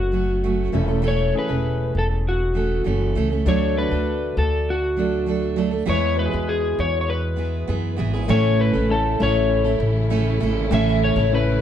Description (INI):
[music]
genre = acoustic pop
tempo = 99 BPM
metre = 4/4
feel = straight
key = A major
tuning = A4 = 440 Hz
[part]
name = electric slide guitar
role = melody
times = 0.0-11.6 s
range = F#4 to E5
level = -24 LUFS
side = left 2 dB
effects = slapback echo
[part]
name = fingerpicked steel-string acoustic guitar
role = accompaniment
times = 0.0-11.6 s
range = A2 to A4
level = -24 LUFS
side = right 5 dB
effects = none
[part]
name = warm concert grand piano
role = accompaniment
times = 0.0-11.6 s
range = G#3 to D5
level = -29 LUFS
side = left 6 dB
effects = none
[part]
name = upright bass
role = bass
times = 0.0-11.6 s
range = E1 to F#2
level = -23 LUFS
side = left 1 dB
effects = none
[part]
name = dark studio string section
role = sustained chords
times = 8.3-11.6 s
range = C#3 to E4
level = -30 LUFS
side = left 1 dB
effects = none
[sound]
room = light reverb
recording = dark, warm production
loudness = -18 LUFS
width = side -10 dB against mid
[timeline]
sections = 0.0-8.3 A section; 8.3-11.6 B section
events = none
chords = 0.0 F#m; 0.7 A/E; 3.5 D; 5.9 E; 8.3 A